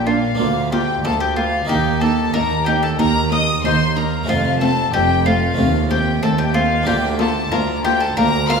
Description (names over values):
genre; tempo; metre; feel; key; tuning
classical, baroque-style concerto movement with solo episodes; 92 BPM; 4/4; straight; Bb major; A4 = 440 Hz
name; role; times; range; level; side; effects
bowl-back mandolin; melody; 0.0-8.6 s; F4 to F5; -21 LUFS; left 4 dB; none
warm chamber violin section; melody; 0.0-8.6 s; F5 to F6; -24 LUFS; left 3 dB; none
harpsichord; accompaniment; 0.0-8.6 s; D2 to Bb4; -27 LUFS; right 1 dB; none
clear chamber double bass section; bass; 0.0-8.6 s; F1 to Eb2; -23 LUFS; right 3 dB; none
warm chamber cello section; bass; 0.0-8.6 s; D2 to Bb2; -23 LUFS; right 4 dB; none
warm chamber violin section; second line; 0.1-8.6 s; C4 to F4; -26 LUFS; left 3 dB; none
warm chamber viola section; accompaniment; 0.1-8.6 s; A3 to Bb3; -23 LUFS; right 2 dB; none
room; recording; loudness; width
wet recital hall reverb, RT60 1.6 s; recorded in a church or concert hall; -15 LUFS; side -5 dB against mid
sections
0.0-8.6 A section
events
none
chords
0.4 Bb/D; 1.7 Eb5; 4.3 F; 5.6 F7/Eb; 6.9 Bb/D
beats
0.39 1.04 | 1.69 2.34 2.99 3.64 | 4.29 4.93 5.58 6.23 | 6.87 7.52 8.17